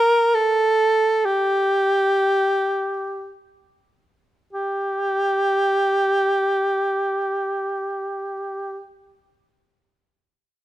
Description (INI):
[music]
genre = caucasian folk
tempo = free time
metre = none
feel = none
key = G minor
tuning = A4 = 441 Hz
[part]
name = warm soprano saxophone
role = solo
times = 0.0-8.9 s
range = G4 to Bb4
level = -19 LUFS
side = right 1 dB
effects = none
[sound]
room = light reverb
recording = close, detailed microphones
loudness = -19 LUFS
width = side -14 dB against mid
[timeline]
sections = 0.0-4.5 A section; 4.5-8.2 B section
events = slowing down 0.0-4.5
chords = none